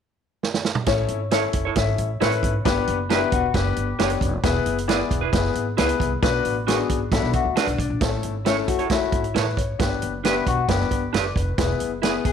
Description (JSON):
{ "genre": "uptempo 1960s-style soul", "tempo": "134 BPM", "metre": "4/4", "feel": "straight", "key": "A major", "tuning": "A4 = 438 Hz", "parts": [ { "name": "vintage drum kit", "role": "drums", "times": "0.4-12.3 s", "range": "hi-hat, kick drum, snare drum, toms", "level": "-24 LUFS", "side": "right 4 dB", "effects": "none" }, { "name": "warm baby grand piano", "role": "accompaniment", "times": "0.9-12.3 s", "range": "A3 to F#5", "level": "-24 LUFS", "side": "left 10 dB", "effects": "none" }, { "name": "upright bass", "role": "bass", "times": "0.9-12.3 s", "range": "E1 to D2", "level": "-27 LUFS", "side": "right 1 dB", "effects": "none" }, { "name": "electric guitar through a small old amp", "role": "stabs", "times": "1.3-12.1 s", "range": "D4 to C#5", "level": "-27 LUFS", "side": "right 11 dB", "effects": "none" }, { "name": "mellow electric guitar", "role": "riff", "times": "3.1-4.2, 7.1-12.3 s", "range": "C#4 to G#4", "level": "-27 LUFS", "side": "left 9 dB", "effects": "phaser" } ], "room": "moderate plate reverb, RT60 1.0 s, studio reverb", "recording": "1960s-style stereo with parts hard left and right", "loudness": "-20 LUFS", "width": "side -7 dB against mid", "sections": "0.9-8.0 A section; 8.0-12.3 B section", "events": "drum fill 0.4-0.9", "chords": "0.0 N.C.; 0.9 A; 2.7 G; 4.4 E; 6.2 Bm; 8.0 A; 9.8 G; 11.6 E" }